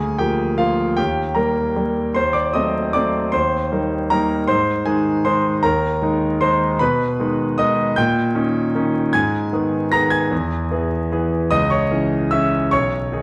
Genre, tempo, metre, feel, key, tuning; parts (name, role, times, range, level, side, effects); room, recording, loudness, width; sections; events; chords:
classical, piano waltz; 153 BPM; 3/4; rubato; Eb major, G# minor from 6.8 s; A4 = 442 Hz
bright concert grand piano; solo; 0.0-13.2 s; B1 to A#6; -19 LUFS; equal
moderate recital hall reverb, RT60 1.4 s; vinyl crackle; -19 LUFS; mono
0.0-13.2 A section
0.0 Bb7/D; 1.0 Eb; 2.2 Ebdim7; 3.3 Eb; 4.5 Ab; 6.8 G#m/B; 8.0 D#7/A#; 9.1 G#m; 10.3 E; 11.5 C#m; 12.7 G#m/B